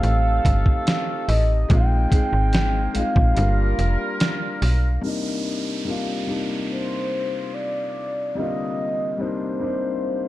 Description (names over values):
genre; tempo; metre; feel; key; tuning
contemporary R&B; 72 BPM; 4/4; straight; C minor; A4 = 440 Hz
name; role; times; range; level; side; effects
mellow horn-like synth lead; melody; 0.0-10.3 s; C5 to G5; -26 LUFS; right 1 dB; chorus, low-pass filter
clear baby grand piano; accompaniment; 0.0-10.3 s; C3 to Ab4; -27 LUFS; left 3 dB; low-pass filter
warm woodwind section; sustained chords; 0.0-5.0 s; F3 to Bb4; -31 LUFS; equal; sidechain pumping
slap-like FM bass; bass; 0.0-5.0 s; F1 to B1; -19 LUFS; equal; none
dusty soul sampler-style drum kit; drums; 0.0-4.8 s; hi-hat, kick drum, snare drum; -21 LUFS; equal; none
downlifter; sound effects; 5.0-10.3 s; none; -35 LUFS; right 3 dB; none
room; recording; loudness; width
little or no reverb; dark, warm production; -20 LUFS; side -15 dB against mid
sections
0.0-5.0 A section; 5.0-10.3 B section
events
break 3.4-5.0; filter sweep 5.0-10.3; grand piano fill 10.0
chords
0.0 F7; 1.7 Bb7sus4; 3.4 Gm7; 5.0 Cm9